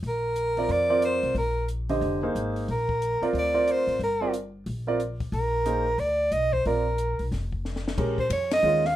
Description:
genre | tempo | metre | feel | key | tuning
modal jazz | 181 BPM | 4/4 | swing 62% on 8ths | Bb mixolydian | A4 = 442 Hz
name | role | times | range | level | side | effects
upright bass | bass | 0.0-9.0 s | F1 to F2 | -31 LUFS | left 1 dB | none
compact cocktail drum kit | drums | 0.0-8.9 s | crash cymbal, hi-hat, kick drum, ride cymbal, snare drum | -35 LUFS | left 3 dB | none
breathy soprano saxophone | melody | 0.1-9.0 s | Bb4 to F5 | -24 LUFS | right 1 dB | none
warm concert grand piano | accompaniment | 0.6-8.8 s | D3 to Eb5 | -27 LUFS | right 2 dB | none
room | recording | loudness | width
light reverb | minimal, uncompressed stereo recording | -23 LUFS | side -13 dB against mid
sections
0.0-8.0 A section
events
drum fill 7.6-8.0; band accent 8.5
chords
0.0 Bb7; 2.7 Gm; 6.7 Bb; 8.0 Eb9

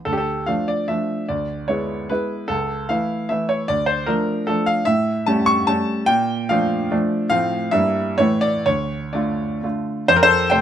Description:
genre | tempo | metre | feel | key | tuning
classical, romantic triple-time dance for piano with dotted rhythms | 119-161 BPM | 3/4 | rubato | D minor | A4 = 440 Hz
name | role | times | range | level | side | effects
clear baby grand piano | solo | 0.1-10.6 s | C#2 to C#6 | -18 LUFS | equal | none
room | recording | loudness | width
light reverb | close, detailed microphones | -18 LUFS | side -10 dB against mid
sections
0.1-10.1 A section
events
none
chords
0.1 Dm; 1.3 E7/D; 2.5 A/C#; 3.7 Dm; 4.9 A7; 6.1 Bbmaj7; 7.3 F/A; 7.7 Edim/G; 8.2 A; 8.7 Dm; 10.1 F

